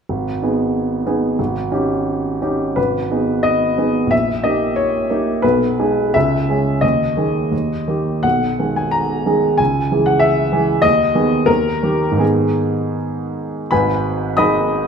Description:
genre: classical, romantic character piece for solo piano.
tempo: 78-99 BPM.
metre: 2/4.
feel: rubato.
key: G# minor.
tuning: A4 = 440 Hz.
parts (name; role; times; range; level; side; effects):
clear baby grand piano; solo; 0.1-14.9 s; G#1 to D#6; -15 LUFS; equal; none.
room: wet recital hall reverb, RT60 1.8 s.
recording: minimal, uncompressed stereo recording.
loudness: -15 LUFS.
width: side -6 dB against mid.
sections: 0.1-2.8 A section; 2.8-13.7 B section; 13.7-14.9 B section.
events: none.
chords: 0.1 G#m; 1.4 D#7/G#; 2.8 G#m; 4.1 D#7/A#; 5.4 G#m/B; 6.1 C#m; 6.8 D#sus4; 7.5 D#; 8.2 G#m/B; 9.6 C#m; 10.8 G#m/D#; 11.5 D#; 12.2 G#m.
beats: | 0.10 0.75 | 1.39 2.05 | 2.77 3.44 | 4.12 4.77 | 5.43 6.15 | 6.83 7.52 | 8.24 8.93 | 9.59 10.22 | 10.83 11.48 | 12.21 12.97 | 13.71 14.37.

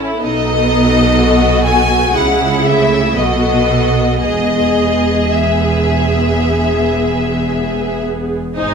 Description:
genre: classical, slow romantic movement for string orchestra.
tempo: 54-65 BPM.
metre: 4/4.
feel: rubato.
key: E major.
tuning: A4 = 440 Hz.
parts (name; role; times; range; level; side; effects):
clear symphonic violin section; second line; 0.0-8.7 s; D#4 to D#5; -20 LUFS; left 1 dB; none.
rich studio viola section; accompaniment; 0.0-8.7 s; G#3 to A4; -17 LUFS; right 1 dB; none.
rich symphonic cello section; bass; 0.0-8.7 s; E2 to C#3; -20 LUFS; right 2 dB; none.
rich symphonic double bass section; bass; 0.0-8.7 s; E1 to C#2; -20 LUFS; right 3 dB; none.
rich symphonic violin section; melody; 0.2-8.7 s; D#5 to G#5; -17 LUFS; left 3 dB; none.
room: moderate scoring stage reverb, RT60 1.7 s.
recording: none.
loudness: -11 LUFS.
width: side -6 dB against mid.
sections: 0.0-8.6 A section.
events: none.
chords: 0.2 B7; 2.1 C#m; 3.2 B7; 4.2 E.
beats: | 0.23 1.17 2.15 3.16 | 4.21 5.32 6.42 7.51 | 8.57.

